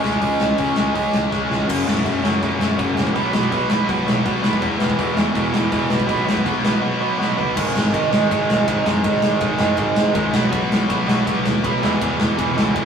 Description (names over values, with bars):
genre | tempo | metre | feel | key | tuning
punk rock | 163 BPM | 4/4 | straight | G# minor | A4 = 439 Hz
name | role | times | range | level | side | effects
overdriven electric guitar | riff | 0.0-12.8 s | E2 to C#4 | -19 LUFS | right 1 dB | none
fuzz picked electric bass | bass | 0.0-12.8 s | E1 to F#2 | -29 LUFS | right 1 dB | overdrive
big rock drum kit | drums | 0.0-12.8 s | crash cymbal, hi-hat, kick drum, ride cymbal, snare drum, toms | -21 LUFS | equal | none
room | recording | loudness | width
light reverb | rough rehearsal-room recording, tube saturation, small room ambience | -16 LUFS | side -7 dB against mid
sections
0.0-1.7 A section; 1.7-7.6 B section; 7.6-12.8 C section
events
drum fill 1.3-1.7, 7.2-7.6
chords
0.0 C#5; 1.7 F#5; 3.2 B5; 4.6 E5; 5.9 B5; 7.6 G#5; 10.3 B5; 11.8 E5